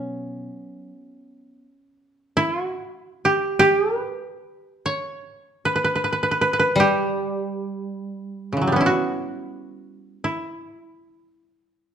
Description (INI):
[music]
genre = japanese traditional, Japanese chamber music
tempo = free time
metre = none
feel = none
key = unclear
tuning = A4 = 440 Hz
[part]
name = koto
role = melody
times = 0.0-11.9 s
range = C#3 to C#5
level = -20 LUFS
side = right 1 dB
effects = none
[part]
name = koto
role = accompaniment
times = 0.0-10.1 s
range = B2 to C#4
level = -27 LUFS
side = left 1 dB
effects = none
[sound]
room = moderate recital hall reverb, RT60 1.3 s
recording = dark, warm production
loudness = -20 LUFS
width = side -8 dB against mid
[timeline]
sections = 0.0-11.9 A section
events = slowing down 3.0-11.9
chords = none